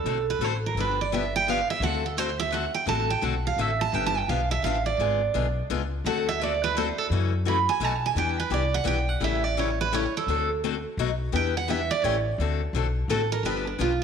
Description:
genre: acoustic string swing (jazz manouche)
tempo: 170 BPM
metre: 3/4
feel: swing 62% on 8ths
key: D mixolydian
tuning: A4 = 440 Hz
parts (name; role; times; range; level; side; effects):
- picked steel-string acoustic guitar; melody; 0.0-14.0 s; D4 to B5; -26 LUFS; right 7 dB; slapback echo
- upright bass; bass; 0.0-14.0 s; G1 to F#2; -29 LUFS; left 1 dB; none
- picked steel-string acoustic guitar; accompaniment; 0.1-13.9 s; B2 to A4; -30 LUFS; left 10 dB; none
room: moderate echo chamber reverb, RT60 1.6 s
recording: 1960s-style stereo with parts hard left and right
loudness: -23 LUFS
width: side -7 dB against mid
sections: 0.0-12.4 A section; 12.4-14.0 A section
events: steel-string acoustic guitar solo 0.0-12.4, 12.4-14.0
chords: 0.0 D7; 0.8 G7; 1.8 D7; 3.9 G7; 5.0 G#dim7; 6.0 D7; 7.1 F#m7; 7.8 B7; 8.2 Em7; 9.2 A7; 10.3 D7; 11.0 B7; 11.3 Em7; 12.0 A7; 12.4 D7; 13.4 G7

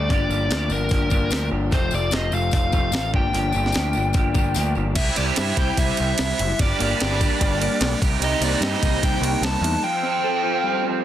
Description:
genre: indie rock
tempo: 148 BPM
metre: 4/4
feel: straight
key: G minor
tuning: A4 = 440 Hz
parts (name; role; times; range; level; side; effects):
- biting lead guitar; melody; 0.0-11.0 s; Bb4 to A5; -25 LUFS; left 2 dB; overdrive, digital delay
- electric guitar through a small old amp; riff; 0.0-11.0 s; F2 to A4; -28 LUFS; left 5 dB; none
- overdriven electric guitar; riff; 0.0-11.0 s; F3 to A4; -27 LUFS; right 9 dB; ensemble chorus
- growling picked electric bass; bass; 0.0-9.7 s; F1 to G2; -24 LUFS; equal; overdrive
- breakbeat sampler-style drum kit; drums; 0.1-9.7 s; crash cymbal, hi-hat, kick drum, ride cymbal, snare drum; -23 LUFS; equal; none
- tambourine; percussion; 0.1-4.8 s; none; -36 LUFS; left 21 dB; none
room: little or no reverb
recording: dense, heavily limited modern master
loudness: -19 LUFS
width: side -11 dB against mid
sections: 0.0-5.0 A section; 5.0-11.0 B section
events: kick and snare drop out 4.6-5.0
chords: 0.1 Gm7; 1.7 F; 3.1 Gm7; 5.0 C; 6.6 Gm; 8.0 Cm7; 9.8 Fadd9

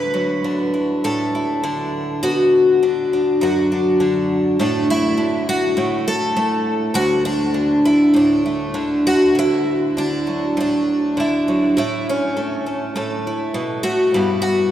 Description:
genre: folk, solo fingerstyle acoustic guitar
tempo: 101 BPM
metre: 4/4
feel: straight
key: D major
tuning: A4 = 440 Hz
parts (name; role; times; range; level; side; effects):
- picked twelve-string acoustic guitar; solo; 0.0-14.7 s; D2 to B4; -16 LUFS; equal; none
room: wet cathedral reverb, RT60 6.4 s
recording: recorded in a church or concert hall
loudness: -16 LUFS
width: side -11 dB against mid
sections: 0.0-9.4 A section; 9.4-14.7 B section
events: none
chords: 0.0 Dadd9; 2.2 Bm; 4.6 Asus4; 5.8 A5; 6.9 D5; 11.8 A; 14.1 Em/G

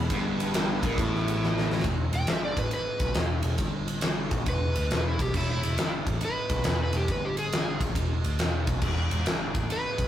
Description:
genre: blues rock power trio and southern rock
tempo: 138 BPM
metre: 4/4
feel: swing 66% on 8ths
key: unclear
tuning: A4 = 440 Hz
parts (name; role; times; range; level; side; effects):
- tonewheel organ; sustained chords; 0.0-1.8 s; B3 to B4; -36 LUFS; right 3 dB; slow rotary speaker, overdrive, chorus vibrato
- distorted electric guitar; riff; 0.0-1.8 s; G2 to A#2; -29 LUFS; left 1 dB; distortion
- overdriven picked electric bass; bass; 0.0-10.1 s; E1 to D2; -29 LUFS; equal; none
- huge arena drum kit; drums; 0.1-10.1 s; crash cymbal, kick drum, ride cymbal, snare drum; -28 LUFS; equal; none
- overdriven slide guitar; melody; 2.2-10.1 s; E4 to G5; -31 LUFS; equal; none
room: light reverb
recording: rough rehearsal-room recording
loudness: -25 LUFS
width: side -11 dB against mid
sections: 0.0-1.8 A section; 1.8-10.1 B section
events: drum fill 1.4-1.8; electric slide guitar solo 1.8-10.1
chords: 0.0 E; 1.8 E5

